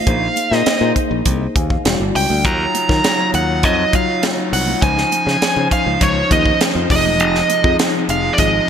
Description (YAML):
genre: polished 1980s jazz-funk pop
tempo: 101 BPM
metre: 4/4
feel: straight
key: Eb dorian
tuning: A4 = 440 Hz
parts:
  - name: nasal lead guitar with a parked wah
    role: melody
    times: 0.0-8.7 s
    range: Db5 to Bb5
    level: -17 LUFS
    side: right 2 dB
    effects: overdrive
  - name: mellow tine electric piano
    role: accompaniment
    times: 0.0-8.7 s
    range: F3 to Ab5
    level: -21 LUFS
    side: left 3 dB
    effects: medium stereo tremolo, ensemble chorus
  - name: modern bright fingered electric bass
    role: bass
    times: 0.1-8.6 s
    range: E1 to Eb3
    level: -20 LUFS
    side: equal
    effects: none
  - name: tight funk drum kit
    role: drums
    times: 0.1-8.5 s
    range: hi-hat, kick drum, snare drum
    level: -19 LUFS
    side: equal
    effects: gated reverb
  - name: congas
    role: percussion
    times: 0.4-7.9 s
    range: none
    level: -32 LUFS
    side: right 12 dB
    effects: none
  - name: pipe organ, trumpet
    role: sustained chords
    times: 2.4-8.7 s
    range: C3 to C5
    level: -27 LUFS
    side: right 1 dB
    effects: none
room: moderate plate reverb, RT60 1.8 s, small room reverb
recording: bright 1980s-style digital production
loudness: -13 LUFS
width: side -8 dB against mid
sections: 0.0-8.7 A section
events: none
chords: 0.1 Bb9sus4; 1.9 Em9; 2.4 Ebm9; 4.8 Dbmaj9; 6.9 Fm7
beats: | 0.07 0.66 1.26 1.85 | 2.44 3.04 3.63 4.23 | 4.82 5.42 6.01 6.60 | 7.20 7.79 8.38